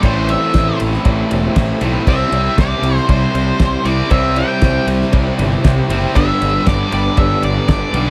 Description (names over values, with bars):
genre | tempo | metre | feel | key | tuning
classic rock | 118 BPM | 4/4 | straight | C major | A4 = 440 Hz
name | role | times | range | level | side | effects
octave-fuzz lead guitar | melody | 0.0-8.1 s | C5 to G5 | -22 LUFS | equal | distortion, tape echo
picked swing-style acoustic guitar | accompaniment | 0.0-8.1 s | A2 to C5 | -30 LUFS | equal | none
tonewheel organ | sustained chords | 0.0-8.1 s | B3 to C5 | -31 LUFS | equal | none
biting overdriven guitar | riff | 0.0-8.1 s | G2 to E4 | -25 LUFS | equal | none
cranked stack guitar | riff | 0.0-8.1 s | G2 to C4 | -24 LUFS | equal | overdrive
thick fuzz guitar | riff | 0.0-8.1 s | G2 to C4 | -27 LUFS | equal | none
fuzz fingered electric bass | bass | 0.0-8.1 s | E1 to C2 | -21 LUFS | equal | overdrive
damped 70s drum kit | drums | 0.0-8.1 s | crash cymbal, kick drum, ride cymbal, snare drum | -20 LUFS | equal | none
cowbell | percussion | 0.0-7.8 s | none | -32 LUFS | equal | none
room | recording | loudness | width
light reverb | none | -15 LUFS | mono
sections
0.0-8.1 A section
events
none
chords
0.0 Am7; 2.1 C; 6.2 G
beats
| 0.04 0.54 1.05 1.56 | 2.07 2.58 3.09 3.60 | 4.11 4.62 5.13 5.64 | 6.16 6.67 7.18 7.69